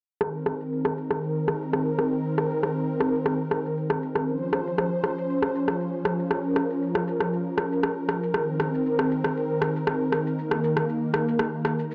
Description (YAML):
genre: afro house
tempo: 118 BPM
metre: 4/4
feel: swing 53% on 16ths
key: C phrygian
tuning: A4 = 440 Hz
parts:
  - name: warm analog pad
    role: sustained chords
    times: 0.2-11.9 s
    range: Eb3 to C5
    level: -28 LUFS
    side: equal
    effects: chorus
  - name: electronic rim click and shaker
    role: drums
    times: 0.2-11.9 s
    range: none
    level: -30 LUFS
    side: equal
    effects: low-pass filter on snare, low-pass filter on perc, low-pass filter on room
room: light reverb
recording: dry, gritty hardware recording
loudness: -26 LUFS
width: mono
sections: 0.2-11.9 A section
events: none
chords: 0.2 Cm7; 4.3 Dbmaj7; 8.3 Cm7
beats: | 0.21 0.72 1.23 1.73 | 2.24 2.75 3.26 3.77 | 4.28 4.79 5.29 5.80 | 6.31 6.82 7.33 7.84 | 8.34 8.85 9.36 9.87 | 10.38 10.89 11.39 11.90